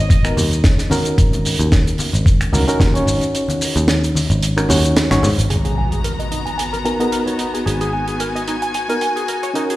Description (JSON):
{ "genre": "nu-disco, nu disco", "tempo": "111 BPM", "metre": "4/4", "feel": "swing 55% on 16ths", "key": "G# minor", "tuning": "A4 = 439 Hz", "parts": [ { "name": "reed electric piano", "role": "accompaniment", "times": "0.0-9.8 s", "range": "B3 to C#5", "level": "-21 LUFS", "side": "equal", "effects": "fast tremolo, sidechain pumping, low-pass filter, slapback echo" }, { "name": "picked electric bass", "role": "bass", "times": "0.0-9.8 s", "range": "G#1 to G#2", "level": "-19 LUFS", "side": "equal", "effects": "none" }, { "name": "electronic kick drum", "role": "drums", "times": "0.1-2.9 s", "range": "none", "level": "-14 LUFS", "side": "equal", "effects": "overdrive" }, { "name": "tight funk drum kit", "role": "drums", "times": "0.1-9.8 s", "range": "finger snaps, hi-hat, shaker, snare drum", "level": "-22 LUFS", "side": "right 1 dB", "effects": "none" }, { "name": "congas", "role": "percussion", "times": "0.4-5.4 s", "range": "none", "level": "-24 LUFS", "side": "left 1 dB", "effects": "none" }, { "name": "rich studio string section", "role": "sustained chords", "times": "5.5-9.8 s", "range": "B3 to A#5", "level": "-23 LUFS", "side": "left 3 dB", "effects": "sidechain pumping" }, { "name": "direct-recorded clean electric guitar", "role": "riff", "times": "5.5-9.7 s", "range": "D#4 to G#5", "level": "-25 LUFS", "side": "right 2 dB", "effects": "wide subtle chorus, vintage 12-bit sampler grit, low-pass filter, slapback echo" }, { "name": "impact", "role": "sound effects", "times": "5.5-7.7 s", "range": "none", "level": "-24 LUFS", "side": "equal", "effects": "none" } ], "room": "light reverb, small room ambience", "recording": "played on a big sound system in a bare room, large studio reverb", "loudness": "-15 LUFS", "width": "side -16 dB against mid", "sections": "0.0-5.5 A section; 5.5-9.8 B section", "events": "kick drops out 3.3-5.5; impact 5.5-7.7; filter sweep on clean electric guitar 5.5-9.8; filter sweep on reed electric piano 5.5-9.8", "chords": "0.0 G#m9; 1.2 D#m7/G#; 5.5 G#m9", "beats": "0.10 0.64 | 1.18 1.72 2.26 2.80 | 3.34 3.88 4.42 4.96 | 5.50 6.04 6.59 7.13 | 7.67 8.21 8.75 9.29" }